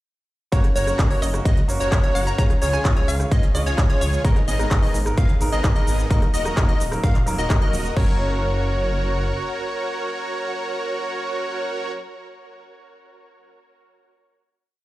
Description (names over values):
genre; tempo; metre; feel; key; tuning
EDM, festival progressive house; 129 BPM; 4/4; straight; F# major; A4 = 440 Hz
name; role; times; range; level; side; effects
warm grand piano; accompaniment; 0.5-11.9 s; F#3 to C#5; -30 LUFS; right 1 dB; sidechain pumping, digital delay
plucky unison lead; arpeggios; 0.5-11.9 s; C#5 to E#5; -29 LUFS; equal; sidechain pumping, digital delay
dense compressed supersaw; riff; 0.5-11.9 s; B3 to E#5; -28 LUFS; right 1 dB; sidechain pumping, digital delay
detuned saw bass; bass; 0.5-9.3 s; D#1 to D#2; -24 LUFS; equal; sidechain pumping
big-room dance drum kit; drums; 0.5-8.1 s; cabasa, crash cymbal, handclaps, hi-hat, rim click; -30 LUFS; equal; overdrive
electronic kick drum; drums; 0.5-8.1 s; none; -19 LUFS; equal; overdrive
hollow square pluck; melody; 1.2-4.3 s; C#5 to A#5; -32 LUFS; equal; chorus, digital delay
room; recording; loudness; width
digital ambience; played on a big sound system in a bare room, large studio reverb; -18 LUFS; side -17 dB against mid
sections
0.5-8.0 drop; 8.0-11.7 final chord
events
drop 0.5-8.0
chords
0.5 F#; 2.4 C#; 4.2 G#madd9; 6.1 D#m; 8.0 F#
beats
| 0.52 0.99 1.45 1.92 | 2.38 2.85 3.31 3.78 | 4.25 4.71 5.17 5.64 | 6.11 6.57 7.04 7.50 | 7.97 8.43 8.90 9.36 | 9.83 10.29 10.76 11.22